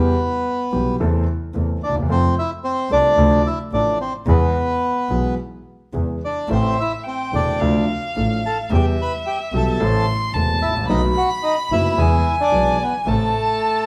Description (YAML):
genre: tango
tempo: 110 BPM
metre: 4/4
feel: rubato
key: A minor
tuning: A4 = 439 Hz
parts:
  - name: bandoneon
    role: melody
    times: 0.0-13.9 s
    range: A3 to B5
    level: -23 LUFS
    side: equal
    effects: none
  - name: warm concert grand piano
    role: accompaniment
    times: 0.0-13.3 s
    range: E1 to A4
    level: -25 LUFS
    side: equal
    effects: none
  - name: clear double bass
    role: bass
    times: 0.0-13.3 s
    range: E1 to F2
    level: -23 LUFS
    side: equal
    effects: none
  - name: warm violin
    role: second line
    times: 6.5-13.9 s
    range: E5 to C6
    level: -26 LUFS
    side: equal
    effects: none
room: moderate large studio reverb, RT60 1.1 s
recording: band playing live in one room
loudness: -19 LUFS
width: mono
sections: 0.0-13.9 A section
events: none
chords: 0.0 Em; 1.0 Am/E; 2.1 F; 3.2 Dm; 4.3 E; 6.5 Am; 7.6 Dm; 8.7 Em; 9.8 Am; 10.9 B7; 12.0 E; 13.1 Am